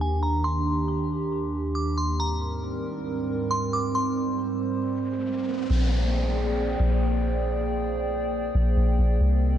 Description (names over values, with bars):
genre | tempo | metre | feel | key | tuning
hip hop | 137 BPM | 4/4 | half-time | unclear | A4 = 440 Hz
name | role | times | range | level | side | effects
glassy synth bell | melody | 0.0-4.4 s | Ab5 to D6 | -31 LUFS | equal | chorus, phaser, low-pass filter, tape echo
warbly tape-like pad | sustained chords | 0.0-9.6 s | Eb2 to G5 | -26 LUFS | right 1 dB | chorus, built-in reverb, low-pass filter
riser and downlifter | sound effects | 5.0-9.2 s | none | -37 LUFS | left 1 dB | none
soft 808-style bass | bass | 5.7-9.6 s | Bb1 to C2 | -23 LUFS | equal | none
room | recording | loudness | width
light reverb, digital ambience | dark, warm production | -23 LUFS | side -10 dB against mid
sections
0.0-5.7 A section; 5.7-9.6 B section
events
filter sweep 0.0-5.7; riser 5.0-5.7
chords
0.0 Ebmaj7; 2.2 Abmaj9; 5.7 Bb13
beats
0.01 | 0.45 0.88 1.32 1.76 | 2.20 2.64 3.07 3.51 | 3.95 4.39 4.83 5.26 | 5.70 6.14 6.58 7.01 | 7.45 7.89 8.33 8.77 | 9.21